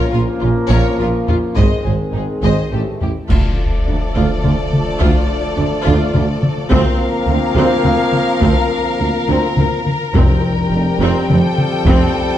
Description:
cinematic, epic orchestral film score; 105 BPM; 3/4; straight; A4 = 440 Hz
warm symphonic violin section; melody; 0.0-12.4 s; F4 to G5; -26 LUFS; left 5 dB
warm symphonic violin section; second line; 0.0-12.4 s; Db4 to C5; -24 LUFS; left 4 dB
warm symphonic viola section; accompaniment; 0.0-12.1 s; A3 to Ab4; -23 LUFS; right 1 dB
mellow French horn section; sustained chords; 0.0-12.4 s; C4 to Ab4; -23 LUFS; left 4 dB
warm trombone section; sustained chords; 0.0-12.4 s; Eb3 to Bb3; -24 LUFS; right 2 dB
rich symphonic cello section; bass; 0.1-11.9 s; D2 to Bb2; -21 LUFS; right 2 dB
warm studio double bass section; bass; 0.1-11.9 s; F1 to D2; -21 LUFS; right 2 dB
warm tuba; bass; 0.1-12.0 s; F1 to D2; -23 LUFS; right 3 dB
taiko ensemble; drums; 0.7-12.4 s; -18 LUFS; left 1 dB
clash cymbals and concert bass drum; percussion; 3.3-4.4 s; -21 LUFS; equal
timpani; percussion; 10.2-11.0 s; F2; -20 LUFS; left 2 dB
moderate recital hall reverb, RT60 1.6 s; dark, warm production; -13 LUFS; side -11 dB against mid
0.0-3.3 A section; 3.3-12.4 B section
band accent 3.3-3.9
0.0 Bbm; 1.6 Ab; 2.7 A7; 3.3 Dm; 6.7 Bbadd9/D; 10.2 Fadd9
0.42 0.99 | 1.57 2.14 2.72 | 3.31 3.88 4.45 | 5.02 5.58 6.15 | 6.72 7.29 7.85 | 8.43 9.01 9.58 | 10.16 10.73 11.30 | 11.87

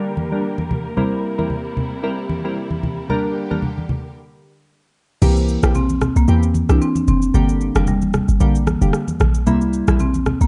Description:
afrobeats; 113 BPM; 4/4; swing 55% on 16ths; A4 = 442 Hz
marimba with medium hard mallets; melody; 0.0-0.7, 5.2-10.5 s; G3 to D5; -24 LUFS; equal; low-pass filter, tape echo
glassy digital keys; accompaniment; 0.0-10.0 s; C3 to Bb4; -24 LUFS; equal; chorus, phaser, low-pass filter
clear studio string section; sustained chords; 0.0-4.1 s; C3 to Bb4; -31 LUFS; equal; low-pass filter
congas; percussion; 0.2-10.4 s; -26 LUFS; equal
short 808-style bass; bass; 5.2-10.5 s; F1 to E2; -19 LUFS; equal
afro-pop drum kit; drums; 5.2-10.5 s; crash cymbal, rim click, shaker; -28 LUFS; equal
studio reverb; dark, warm production, nothing above 10.5 kHz; -18 LUFS; mono
0.0-5.2 A section; 5.2-10.5 B section
stop 4.2-5.2; kick muted 5.2-10.5
0.0 Gm; 1.0 C7; 3.1 Gm; 5.2 C7; 7.3 Gm; 9.5 C7
0.44 | 0.97 1.50 2.03 2.56 | 3.10 3.63 4.16 4.69 | 5.22 5.75 6.28 6.81 | 7.34 7.87 8.40 8.94 | 9.47 10.00

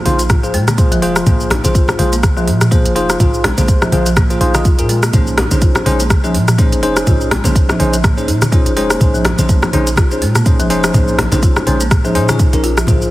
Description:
afro house; 124 BPM; 4/4; swing 57% on 16ths; Bb minor; A4 = 440 Hz
bell-like tine electric piano; stabs; 0.0-13.1 s; Db4 to Eb5; -18 LUFS; left 1 dB; wide subtle chorus, sidechain pumping, low-pass filter, dub echo
folk marimba with soft mallets; arpeggios; 0.1-13.0 s; F3 to F4; -20 LUFS; equal; sidechain pumping, dub echo
warm 808-style bass; bass; 0.1-13.1 s; F1 to Bb2; -18 LUFS; equal; sidechain pumping
afro-pop drum kit; drums; 0.1-13.1 s; cabasa, hi-hat, rim click, toms; -18 LUFS; equal
congas; percussion; 0.1-13.0 s; -21 LUFS; left 1 dB
electronic kick drum; drums; 0.3-13.0 s; -13 LUFS; equal
light reverb; heavily compressed radio sound, multiband compression; -10 LUFS; side -16 dB against mid
0.0-13.1 A section
0.0 Fm; 5.1 Bbm11
0.30 0.78 | 1.27 1.75 2.23 2.72 | 3.20 3.69 4.17 4.65 | 5.14 5.62 6.10 6.59 | 7.07 7.56 8.04 8.52 | 9.01 9.49 9.97 10.46 | 10.94 11.43 11.91 12.39 | 12.88

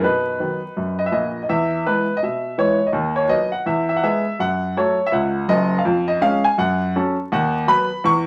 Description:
jazz, stride piano; 165 BPM; 4/4; swing 61% on 8ths; E major; A4 = 440 Hz
clear grand piano; solo; 0.0-8.3 s; F#1 to C#6; -20 LUFS; equal
wet studio reverb, RT60 0.6 s; vinyl crackle; -20 LUFS; mono
0.0-1.5 A section; 1.5-8.3 B section
0.0 B; 1.5 E; 2.9 B/D#; 3.7 E; 4.4 F#m; 5.8 C#/E#; 6.6 F#m; 7.3 B/D#
| 0.02 0.38 0.75 1.11 | 1.48 1.84 2.21 2.57 | 2.93 3.30 3.66 4.03 | 4.39 4.75 5.12 5.49 | 5.85 6.21 6.58 6.94 | 7.31 7.67 8.04

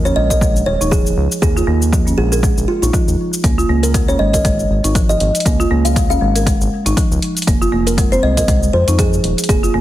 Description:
afro house; 119 BPM; 4/4; swing 57% on 16ths; A4 = 440 Hz
folk marimba with medium mallets; arpeggios; 0.0-9.8 s; F3 to Bb4; -19 LUFS; right 1 dB; sidechain pumping, low-pass filter, ping-pong delay
round analog bass; bass; 0.0-9.8 s; Eb1 to F2; -18 LUFS; equal; sidechain pumping
kalimba; melody; 0.1-9.7 s; F4 to F5; -19 LUFS; right 1 dB; ping-pong delay
electronic shaker and hi-hat; drums; 0.1-9.7 s; -24 LUFS; equal; overdrive, studio ambience
electronic kick drum; drums; 0.3-9.6 s; -17 LUFS; equal; overdrive, studio ambience
light reverb, small room reverb; heavily compressed radio sound; -12 LUFS; side -14 dB against mid
0.0-9.8 A section
0.0 Eb5; 3.4 Db5; 7.5 F5
0.41 0.92 | 1.42 1.93 2.43 2.94 | 3.44 3.94 4.45 4.95 | 5.46 5.96 6.46 6.97 | 7.47 7.98 8.48 8.99 | 9.49

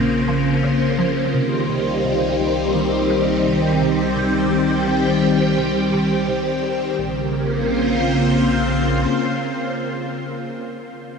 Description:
ambient; 85 BPM; 4/4; straight; Bb dorian; A4 = 441 Hz
phased string machine; sustained chords; 0.0-10.6 s; Db3 to C5; -17 LUFS; equal; ensemble chorus, phaser
resonant blip pluck; riff; 0.0-7.3 s; Bb2 to G4; -30 LUFS; equal
warm sub bass; bass; 0.0-9.1 s; Bb1 to C2; -31 LUFS; equal
wet huge ambient reverb, RT60 7.3 s; -17 LUFS; side -5 dB against mid
0.0-7.0 A section; 7.0-9.8 B section
fade-out on sub bass 0.0-7.0
0.0 Bbmadd9; 1.3 Cm; 7.0 Bbmadd9
0.63 | 1.34 2.04 2.75 3.45 | 4.16 4.87 5.57 6.28 | 6.98 7.69 8.39 9.10

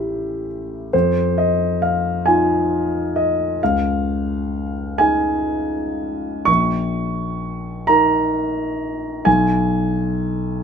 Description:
classical, impressionist solo piano; 38-46 BPM (dotted quarters); 6/8; rubato; A4 = 442 Hz
warm concert grand piano; solo; 0.0-10.6 s; A1 to Db6; -17 LUFS; equal
moderate studio reverb, RT60 0.8 s; -17 LUFS; side -6 dB against mid
0.0-10.6 A section
0.0 A5; 0.9 Fm7; 3.6 Dbadd9; 6.5 Bbmadd11; 9.3 N.C.
| 0.93 2.26 | 3.61 4.98 | 6.48 7.89 | 9.27

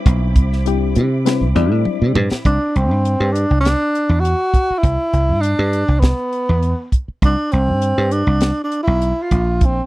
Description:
electric jazz fusion; 100 BPM; 4/4; straight; C lydian; A4 = 444 Hz
reed electric piano; accompaniment; 0.0-2.2 s; G3 to D5; -21 LUFS; left 17 dB
soft string machine; sustained chords; 0.0-2.4 s; C4 to D6; -31 LUFS; right 1 dB; ensemble chorus
dry thumbed slap bass; bass; 0.1-9.8 s; Bb1 to C3; -16 LUFS; right 1 dB
tight funk drum kit; drums; 0.1-9.8 s; hi-hat, kick drum, snare drum, toms; -16 LUFS; equal
breathy tenor saxophone; melody; 2.5-9.8 s; B3 to F#4; -18 LUFS; equal; slapback echo
little or no reverb; dry, close 1970s-style studio recording; -14 LUFS; side -18 dB against mid
0.0-2.5 A section; 2.5-9.9 B section
drum fill 1.9-2.5
0.0 Cmaj9; 2.5 Csus2; 9.3 Bbsus2
| 0.07 0.66 1.26 1.85 | 2.45 3.05 3.64 4.24 | 4.84 5.44 6.03 6.63 | 7.23 7.83 8.42 9.02 | 9.62

